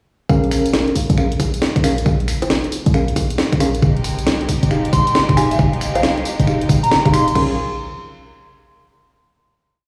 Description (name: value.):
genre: UK garage, two-step garage.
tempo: 136 BPM.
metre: 4/4.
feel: swing 64% on 16ths.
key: Bb dorian.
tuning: A4 = 435 Hz.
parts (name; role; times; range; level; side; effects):
mellow tine electric piano; stabs; 0.3-7.5 s; Db4 to F5; -24 LUFS; equal; tape echo.
short 808-style bass; bass; 0.3-7.6 s; F1 to C2; -21 LUFS; equal; none.
electronic kick drum; drums; 0.3-7.5 s; none; -21 LUFS; equal; none.
house drum kit; drums; 0.3-7.5 s; bongos, crash cymbal, finger snaps, hi-hat, snare drum, tambourine; -24 LUFS; equal; none.
bright studio violin section; sustained chords; 3.8-7.6 s; Ab3 to Ab4; -29 LUFS; equal; vintage 12-bit sampler grit, sidechain pumping.
soft synth bell; melody; 4.9-7.3 s; F5 to C6; -22 LUFS; equal; chorus, phaser, tape echo.
room: moderate studio ambience, RT60 0.5 s.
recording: played on a big sound system in a bare room, large studio reverb, studio reverb.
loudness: -17 LUFS.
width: mono.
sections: 0.3-7.4 drop; 7.4-9.1 final chord.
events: drop 0.3-7.4.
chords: 0.3 Bbm7; 3.8 Fm9; 7.4 Bbm7.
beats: | 0.30 0.74 1.18 1.62 | 2.06 2.50 2.94 3.38 | 3.83 4.27 4.71 5.15 | 5.59 6.03 6.47 6.91 | 7.35.